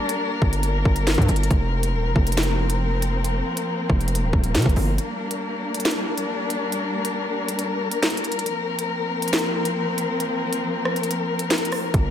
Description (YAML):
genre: hip hop, drill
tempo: 138 BPM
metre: 4/4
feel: half-time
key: unclear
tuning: A4 = 438 Hz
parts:
  - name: dark chamber string section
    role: sustained chords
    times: 0.0-12.1 s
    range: F3 to Bb4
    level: -24 LUFS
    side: left 2 dB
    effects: none
  - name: drill drum kit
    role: drums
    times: 0.1-12.0 s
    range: handclaps, hi-hat, kick drum, rim click, snare drum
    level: -23 LUFS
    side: equal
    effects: none
  - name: distorted 808-style bass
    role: bass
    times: 0.4-5.0, 11.9-12.1 s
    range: Eb1 to C3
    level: -22 LUFS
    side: equal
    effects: distortion
room: digital ambience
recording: none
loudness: -20 LUFS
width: side -10 dB against mid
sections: 0.0-12.1 A section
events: break 5.0-11.9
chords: 0.0 Gm; 1.5 Fsus4; 5.0 Gm; 8.5 Fsus4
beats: 0.20 0.64 1.07 | 1.51 1.94 2.38 2.81 | 3.25 3.68 4.11 4.55 | 4.98 5.42 5.85 6.29 | 6.72 7.16 7.59 8.03 | 8.46 8.90 9.33 9.77 | 10.20 10.64 11.07 11.51 | 11.94